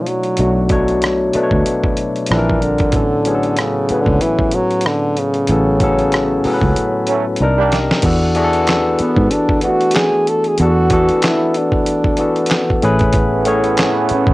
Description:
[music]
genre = R&B, neo-soul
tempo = 94 BPM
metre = 4/4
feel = swing 59% on 16ths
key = unclear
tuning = A4 = 440 Hz
[part]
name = clear French horn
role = melody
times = 0.0-14.3 s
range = C#3 to A4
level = -18 LUFS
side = right 1 dB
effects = cassette tape
[part]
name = barky tine electric piano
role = accompaniment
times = 0.0-14.3 s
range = A2 to Bb5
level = -16 LUFS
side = left 2 dB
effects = cassette tape
[part]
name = dusty soul sampler-style drum kit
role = drums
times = 0.1-14.3 s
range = crash cymbal, handclaps, hi-hat, kick drum, rim click, snare drum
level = -19 LUFS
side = equal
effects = none
[part]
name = fingered electric bass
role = bass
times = 0.4-14.3 s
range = A1 to G#2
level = -18 LUFS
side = equal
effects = none
[part]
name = brilliant trombone section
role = stabs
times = 7.1-7.8, 13.1-14.3 s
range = E3 to D4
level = -18 LUFS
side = right 6 dB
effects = cassette tape
[sound]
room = light reverb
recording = home recording on cassette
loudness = -13 LUFS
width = side -19 dB against mid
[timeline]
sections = 0.0-8.0 A section; 8.0-14.3 B section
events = band accent 5.5-8.0; drum fill 6.8-8.0; tine electric piano fill 7.1-8.0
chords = 0.0 Bm9; 2.3 A#6; 2.9 A6; 7.4 Cm9; 8.0 E7sus4; 12.8 Amaj9

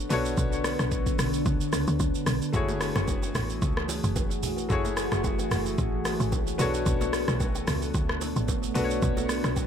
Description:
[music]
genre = amapiano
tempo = 111 BPM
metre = 4/4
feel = swing 55% on 16ths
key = unclear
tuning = A4 = 440 Hz
[part]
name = clear grand piano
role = accompaniment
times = 0.0-9.7 s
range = A3 to C#5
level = -32 LUFS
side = left 4 dB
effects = tape echo
[part]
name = deep dark ambient pad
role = sustained chords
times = 0.0-9.7 s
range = B2 to G#4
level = -31 LUFS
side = equal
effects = chorus, built-in reverb, sidechain pumping
[part]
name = tight log drum bass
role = bass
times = 0.0-9.7 s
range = F#1 to D2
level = -30 LUFS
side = equal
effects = none
[part]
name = deep house drum kit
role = drums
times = 0.1-9.7 s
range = hi-hat, kick drum, rim click, shaker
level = -29 LUFS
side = equal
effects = none
[part]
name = congas and bongos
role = percussion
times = 2.5-9.7 s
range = none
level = -38 LUFS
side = right 2 dB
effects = tape echo
[sound]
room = light reverb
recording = echo-heavy mix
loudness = -24 LUFS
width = side -8 dB against mid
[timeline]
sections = 0.0-9.7 A section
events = none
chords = 0.0 Bm9; 2.5 F#m9; 6.6 Bm9

